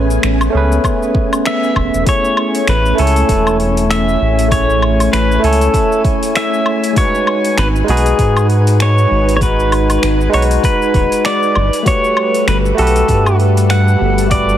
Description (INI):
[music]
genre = sunset chillout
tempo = 98 BPM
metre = 4/4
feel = swing 58% on 16ths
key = unclear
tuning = A4 = 440 Hz
[part]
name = barky tine electric piano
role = accompaniment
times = 0.0-14.6 s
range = G#3 to G#5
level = -17 LUFS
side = left 1 dB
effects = auto-pan
[part]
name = soft string machine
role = sustained chords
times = 0.0-14.6 s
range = G3 to G#5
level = -20 LUFS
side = equal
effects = ensemble chorus
[part]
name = round analog bass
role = bass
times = 0.0-14.6 s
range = D#1 to G#2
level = -14 LUFS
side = equal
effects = none
[part]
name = deep house drum kit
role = drums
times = 0.1-14.6 s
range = finger snaps, hi-hat, shaker, woodblock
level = -22 LUFS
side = left 1 dB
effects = overdrive
[part]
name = electronic kick drum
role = drums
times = 0.8-14.5 s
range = none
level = -17 LUFS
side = equal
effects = overdrive
[part]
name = pedal steel guitar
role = melody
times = 1.5-14.6 s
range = G#4 to F#5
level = -17 LUFS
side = equal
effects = ping-pong delay
[sound]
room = light reverb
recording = heavily compressed radio sound, multiband compression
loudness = -11 LUFS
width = side -11 dB against mid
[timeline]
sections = 0.0-2.1 A section; 2.1-14.6 B section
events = band accent 1.5-1.8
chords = 0.0 Amaj9; 2.1 Amaj7; 7.0 G#m7; 11.6 Gmaj9